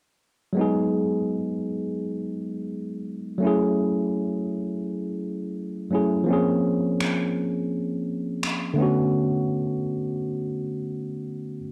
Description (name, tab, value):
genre	contemporary R&B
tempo	84 BPM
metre	4/4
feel	swing 58% on 16ths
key	G# phrygian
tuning	A4 = 442 Hz
part	tine electric piano	accompaniment	0.5-11.7 s	D3 to G#4	-26 LUFS	equal	cassette tape
part	electronic finger snaps	drums	7.0-8.6 s	none	-31 LUFS	equal	cassette tape
room	light reverb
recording	home recording on cassette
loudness	-26 LUFS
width	mono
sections	0.6-11.7 A section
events	break 9.1-11.7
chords	0.6 G#m7; 3.4 F#m7; 6.3 A#m7; 8.8 Bm7